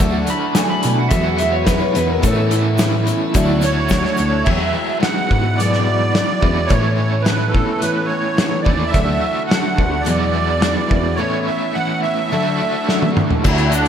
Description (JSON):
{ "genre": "folk rock and heartland rock", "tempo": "107 BPM", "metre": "4/4", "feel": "straight", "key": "E mixolydian", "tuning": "A4 = 440 Hz", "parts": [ { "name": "picked twelve-string acoustic guitar", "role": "accompaniment", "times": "0.0-13.9 s", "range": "E2 to F#4", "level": "-23 LUFS", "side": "left 3 dB", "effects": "none" }, { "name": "warm baby grand piano", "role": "accompaniment", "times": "0.0-4.4, 13.4-13.9 s", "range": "D4 to E5", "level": "-30 LUFS", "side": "right 1 dB", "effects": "none" }, { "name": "tonewheel organ", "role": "sustained chords", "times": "0.0-4.5, 13.4-13.9 s", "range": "F#3 to F#4", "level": "-31 LUFS", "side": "right 1 dB", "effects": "none" }, { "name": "overdriven electric guitar", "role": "riff", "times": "0.0-13.9 s", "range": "E2 to F#4", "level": "-23 LUFS", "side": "equal", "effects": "tremolo, slapback echo" }, { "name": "tine electric piano", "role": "bass", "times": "0.0-13.9 s", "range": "D2 to B2", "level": "-20 LUFS", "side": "equal", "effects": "medium stereo tremolo" }, { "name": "loose indie drum kit", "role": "drums", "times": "0.0-13.9 s", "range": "crash cymbal, hi-hat, kick drum, snare drum, toms", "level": "-19 LUFS", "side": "equal", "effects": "none" }, { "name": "egg shaker", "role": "percussion", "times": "0.0-4.3, 13.5-13.9 s", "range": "none", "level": "-36 LUFS", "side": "right 7 dB", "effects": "none" }, { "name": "electric slide guitar", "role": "second line", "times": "0.3-3.6 s", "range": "E4 to B5", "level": "-21 LUFS", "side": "equal", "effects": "slapback echo" }, { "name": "musette accordion", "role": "melody", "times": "3.6-13.9 s", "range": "D4 to F#5", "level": "-21 LUFS", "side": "right 4 dB", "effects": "slapback echo" } ], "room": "moderate lush hall reverb, RT60 1.8 s, small room ambience", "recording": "big arena sound", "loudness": "-15 LUFS", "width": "side -8 dB against mid", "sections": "0.0-4.5 A section; 4.5-13.4 B section", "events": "electric slide guitar solo 0.0-4.5; drum fill 12.9-13.4", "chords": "0.0 Dadd9; 1.1 Eadd9; 2.2 Aadd9; 3.4 Dadd9; 4.5 Eadd9; 6.7 Aadd9; 9.0 Dadd9; 10.1 Eadd9; 11.2 Aadd9; 12.3 Dadd9" }